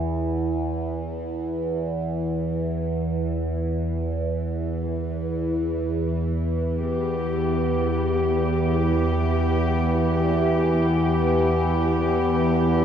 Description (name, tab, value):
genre	dark ambient drone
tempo	free time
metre	none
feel	none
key	unclear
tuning	A4 = 439 Hz
part	overtone-sweeping drone	drone	0.0-12.8 s	E2 to E3	-23 LUFS	right 1 dB	chorus, built-in reverb, phaser
part	dark studio cello section	sustained chords	4.8-12.8 s	E3 to G4	-24 LUFS	left 1 dB	none
room	wet huge ambient reverb, RT60 8.2 s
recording	none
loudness	-21 LUFS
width	side -8 dB against mid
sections	0.0-4.9 A section; 4.9-12.8 B section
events	none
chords	0.0 N.C.; 4.9 Em